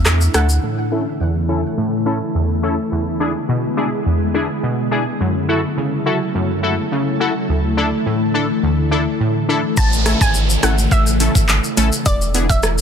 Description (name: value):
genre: dancehall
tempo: 105 BPM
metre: 4/4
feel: straight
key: A major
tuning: A4 = 440 Hz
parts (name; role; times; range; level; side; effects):
- ethereal airy pad; sustained chords; 0.0-12.8 s; A2 to A4; -21 LUFS; left 1 dB; ensemble chorus, built-in reverb, sidechain pumping, low-pass filter
- warm sub bass; bass; 0.0-0.6, 9.8-12.8 s; E1 to E2; -17 LUFS; equal; none
- island pop drum kit; drums; 0.1-0.6, 9.8-12.8 s; handclaps, hi-hat, kick drum, rim click, shaker; -17 LUFS; equal; overdrive
- analog pluck; melody; 0.3-0.4, 9.8-12.7 s; D5 to A5; -24 LUFS; right 1 dB; chorus, tape echo
- synth brass stab; accompaniment; 0.3-12.5 s; D2 to A4; -19 LUFS; equal; chorus, low-pass filter
- downlifter; sound effects; 9.8-12.8 s; none; -26 LUFS; right 2 dB; none
room: light reverb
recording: dense, heavily limited modern master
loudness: -15 LUFS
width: side -7 dB against mid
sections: 0.6-9.8 A section; 9.8-12.8 B section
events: filter sweep 0.6-9.8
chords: 0.0 Dsus2; 0.6 A; 2.9 E7; 5.2 F#m7; 7.5 Dsus2; 9.8 A; 12.1 E7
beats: 0.06 | 0.63 1.20 1.77 2.34 | 2.92 3.49 4.06 4.63 | 5.20 5.77 6.34 6.92 | 7.49 8.06 8.63 9.20 | 9.77 10.34 10.92 11.49 | 12.06 12.63